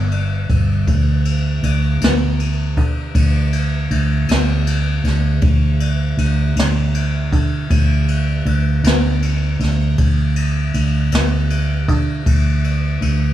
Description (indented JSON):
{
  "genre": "slow blues",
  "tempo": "53 BPM (dotted quarters)",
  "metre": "12/8",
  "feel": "straight",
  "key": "unclear",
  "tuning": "A4 = 440 Hz",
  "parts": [
    { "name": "vintage muted fingered electric bass", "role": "bass", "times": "0.0-13.3 s", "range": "G1 to D3", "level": "-16 LUFS", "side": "right 1 dB", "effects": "none" },
    { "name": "jazz brush drum kit", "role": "drums", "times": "0.1-13.2 s", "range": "kick drum, ride cymbal, snare drum", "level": "-20 LUFS", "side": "equal", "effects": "none" }
  ],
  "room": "little or no reverb",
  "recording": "small room ambience",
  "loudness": "-15 LUFS",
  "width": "side -12 dB against mid",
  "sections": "0.0-13.3 A section",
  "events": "none",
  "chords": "none",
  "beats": "| 0.88 2.01 3.15 4.29 | 5.43 6.57 7.71 8.85 | 9.98 11.12 12.26"
}